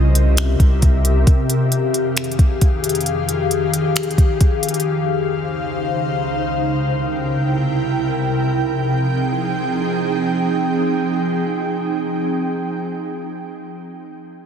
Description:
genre	hip hop, atmospheric cloud-rap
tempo	134 BPM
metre	4/4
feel	half-time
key	F minor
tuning	A4 = 438 Hz
part	ethereal airy pad	sustained chords	0.0-12.3 s	C2 to G5	-19 LUFS	equal	ensemble chorus, built-in reverb, sidechain pumping
part	long sustained 808-style bass	bass	0.0-1.3 s	C2	-15 LUFS	equal	none
part	smooth R&B drum kit	drums	0.2-4.8 s	finger snaps, hi-hat, kick drum	-15 LUFS	equal	soft clipping on snare
room	light reverb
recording	dense, heavily limited modern master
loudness	-16 LUFS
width	side -8 dB against mid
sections	0.0-1.3 A section; 1.3-8.4 B section; 8.4-12.0 C section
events	none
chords	0.0 C7; 1.3 Fm7; 4.9 Dbmaj7; 6.6 C7; 8.4 Fm7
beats	0.38 0.82 | 1.27 1.72 2.17 2.61 | 3.06 3.51 3.96 4.41 | 4.85 5.30 5.75 6.20 | 6.64 7.09 7.54 7.99 | 8.44 8.88 9.33 9.78 | 10.23 10.67 11.12 11.57

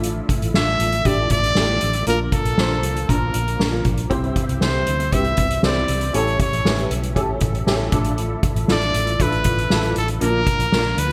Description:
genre	piano-driven pop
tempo	118 BPM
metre	4/4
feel	straight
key	unclear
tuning	A4 = 440 Hz
part	warm upright piano	accompaniment	0.0-11.1 s	G2 to C5	-27 LUFS	equal	ensemble chorus
part	percussive tonewheel organ	sustained chords	0.0-11.1 s	C3 to E5	-35 LUFS	equal	none
part	vintage muted fingered electric bass	bass	0.0-11.1 s	A1 to D2	-26 LUFS	equal	none
part	soft-mallet drum kit	drums	0.0-11.1 s	hi-hat, kick drum, snare drum	-24 LUFS	equal	gated reverb
part	brilliant trumpet	melody	0.6-11.1 s	A4 to E5	-25 LUFS	equal	none
room	light reverb, small room ambience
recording	bright 1980s-style digital production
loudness	-20 LUFS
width	mono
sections	0.0-11.1 A section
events	none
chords	0.0 Dmadd9/A; 2.1 Bb; 4.1 C; 6.1 A7; 7.9 Dmadd9/A; 10.2 Bb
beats	| 0.04 0.54 1.05 1.56 | 2.07 2.58 3.09 3.60 | 4.11 4.62 5.12 5.63 | 6.14 6.65 7.16 7.67 | 8.18 8.69 9.20 9.71 | 10.22 10.73

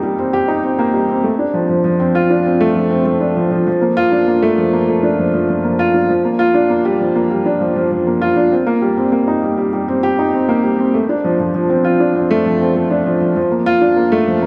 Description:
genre	electronica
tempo	99 BPM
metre	4/4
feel	straight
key	unclear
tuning	A4 = 440 Hz
part	dark upright piano	solo	0.0-14.5 s	F3 to G4	-15 LUFS	equal	tape echo
room	wet lush hall reverb, RT60 2.9 s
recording	dreamy mix soaked in reverb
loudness	-15 LUFS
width	mono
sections	0.0-14.5 A section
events	none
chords	none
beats	0.03 0.64 | 1.24 1.85 2.45 3.06 | 3.67 4.27 4.88 5.48 | 6.09 6.70 7.30 7.91 | 8.51 9.12 9.73 10.33 | 10.94 11.54 12.15 12.76 | 13.36 13.97

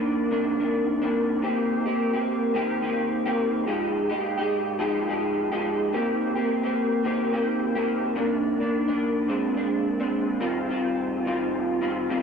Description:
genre	indie pop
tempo	107 BPM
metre	4/4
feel	swing 55% on 16ths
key	Eb major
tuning	A4 = 437 Hz
part	electric guitar through a small old amp	solo	0.0-12.2 s	Bb2 to G4	-23 LUFS	equal	ensemble chorus, vibrato effect
room	wet small room reverb, RT60 0.6 s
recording	dark, warm production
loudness	-23 LUFS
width	side -6 dB against mid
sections	0.0-10.4 A section; 10.4-12.2 B section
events	none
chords	0.0 Cm9; 1.4 Eb6; 3.7 Fm9; 5.9 Eb6; 8.2 Cm9; 9.3 Bb9; 10.4 Eb69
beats	0.31 0.87 | 1.43 1.99 2.55 3.12 | 3.68 4.24 4.80 5.36 | 5.92 6.48 7.04 7.61 | 8.17 8.73 9.29 9.85 | 10.41 10.97 11.53 12.09

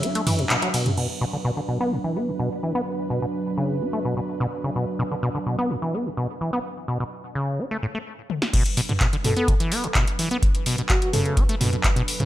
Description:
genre	acid house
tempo	127 BPM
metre	4/4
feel	straight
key	B minor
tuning	A4 = 440 Hz
part	warm analog pad	sustained chords	0.0-12.3 s	F#3 to E5	-31 LUFS	right 2 dB	chorus, sidechain pumping
part	acid bass, saw	riff	0.0-12.3 s	A2 to D4	-25 LUFS	equal	ping-pong delay
part	electro analog drum machine	drums	0.0-1.1, 8.3-12.3 s	crash cymbal, handclaps, hi-hat, ride cymbal, snare drum, toms	-24 LUFS	equal	studio reverb
part	electronic kick drum	drums	8.5-11.9 s	none	-22 LUFS	equal	studio reverb
part	breathy flute-like synth lead	melody	9.2-11.3 s	F#4 to A4	-30 LUFS	equal	chorus, tape echo
room	light reverb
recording	none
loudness	-21 LUFS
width	side -14 dB against mid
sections	1.0-8.5 A section; 8.5-12.3 B section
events	break 0.0-1.0; band accent 0.5; drum fill 8.3; drop 8.5-12.3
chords	0.0 Bm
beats	0.03 0.50 | 0.98 1.45 1.92 2.39 | 2.87 3.34 3.81 4.28 | 4.76 5.23 5.70 6.17 | 6.65 7.12 7.59 8.06 | 8.54 9.01 9.48 9.95 | 10.43 10.90 11.37 11.84

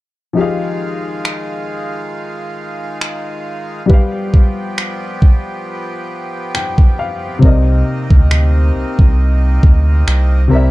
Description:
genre	contemporary R&B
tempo	68 BPM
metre	4/4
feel	swing 54% on 16ths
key	C harmonic minor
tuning	A4 = 439 Hz
part	dark baby grand piano	accompaniment	0.3-10.7 s	C3 to G5	-19 LUFS	left 3 dB	none
part	accordion	sustained chords	0.4-10.7 s	C3 to G4	-25 LUFS	right 1 dB	sidechain pumping
part	smooth R&B drum kit	drums	1.2-10.3 s	finger snaps, kick drum	-10 LUFS	equal	none
part	warm sub bass	bass	7.4-10.7 s	C2 to D2	-12 LUFS	equal	none
room	little or no reverb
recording	dark, warm production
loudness	-12 LUFS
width	side -19 dB against mid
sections	0.4-10.7 A section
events	grand piano fill 6.1-7.4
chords	0.4 Fm7; 3.9 G7; 7.4 Cm7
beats	| 0.37 1.25 2.13 3.01 | 3.90 4.78 5.66 6.54 | 7.42 8.31 9.19 10.07

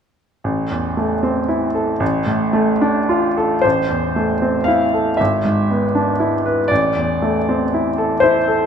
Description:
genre	classical, romantic nocturne for solo piano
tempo	35-41 BPM (dotted quarters)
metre	6/8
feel	rubato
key	A minor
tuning	A4 = 436 Hz
part	clear baby grand piano	solo	0.4-8.7 s	G#1 to F5	-15 LUFS	equal	none
room	moderate scoring stage reverb, RT60 2.0 s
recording	minimal, uncompressed stereo recording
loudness	-15 LUFS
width	side -7 dB against mid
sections	0.4-3.6 A section; 3.6-8.7 B section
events	none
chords	0.4 Am; 2.0 Dm/A; 3.6 Am; 5.2 E7/G#; 6.7 Am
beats	| 0.44 2.01 | 3.65 5.19 | 6.71 8.24

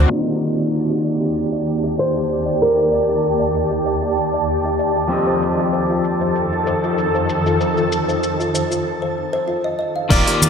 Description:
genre	sunset chillout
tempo	96 BPM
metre	4/4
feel	swing 54% on 16ths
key	unclear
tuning	A4 = 440 Hz
part	shimmering ambient pad	sustained chords	0.0-10.5 s	Eb2 to D5	-20 LUFS	equal	chorus, built-in reverb
part	kalimba	arpeggios	0.0-10.4 s	F4 to F5	-25 LUFS	left 1 dB	low-pass filter, ping-pong delay
part	round analog bass	bass	0.0-0.1, 10.1-10.2 s	Eb1	-14 LUFS	equal	none
part	twinkling granular texture	texture	0.0-10.5 s	A5	-29 LUFS	right 6 dB	built-in reverb
part	nylon-string guitar	melody	0.1-4.8 s	Eb4 to C5	-21 LUFS	left 1 dB	ping-pong delay
part	electric guitar at the edge of break-up	accompaniment	0.1-10.5 s	Eb3 to Eb5	-22 LUFS	left 1 dB	auto-pan, ping-pong delay
part	deep house drum kit	drums	0.1-10.5 s	crash cymbal, hi-hat, shaker	-23 LUFS	left 1 dB	overdrive, low-pass filter on perc, studio reverb, low-pass filter on snare, low-pass filter on cymbals, low-pass filter on hats
part	electronic kick drum	drums	10.1-10.2 s	none	-17 LUFS	equal	overdrive, studio reverb
part	congas	percussion	10.4-10.5 s	none	-20 LUFS	right 2 dB	none
room	wet plate reverb, RT60 1.9 s, digital ambience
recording	bright 1980s-style digital production, low-pass filter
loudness	-16 LUFS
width	side -6 dB against mid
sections	0.1-10.1 A section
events	filter sweep on drum 0.1-10.1; filter sweep on ambient pad 0.1-10.1; filter sweep on kalimba 0.1-10.1; filter sweep 0.1-10.1; break 8.9-10.1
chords	0.1 Ebmaj7; 5.1 F7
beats	| 0.10 0.73 1.35 1.98 | 2.60 3.23 3.85 4.48 | 5.10 5.73 6.35 6.98 | 7.60 8.23 8.85 9.48 | 10.10

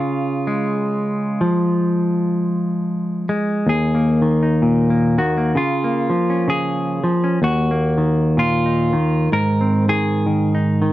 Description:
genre	folk, solo fingerstyle acoustic guitar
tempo	64 BPM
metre	4/4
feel	swing 59% on 8ths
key	Eb dorian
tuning	A4 = 440 Hz
part	semi-hollow electric guitar	solo	0.0-10.9 s	Eb2 to Bb4	-16 LUFS	equal	none
room	moderate studio ambience, RT60 0.4 s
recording	dark, warm production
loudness	-16 LUFS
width	side -15 dB against mid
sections	0.0-3.7 A section; 3.7-10.9 B section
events	none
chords	0.0 Db; 3.7 Eb5; 5.6 Bbm/Db; 7.4 Ebmadd9; 9.3 Ab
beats	0.85 1.79 2.73 | 3.67 4.62 5.56 6.50 | 7.44 8.38 9.32 10.27

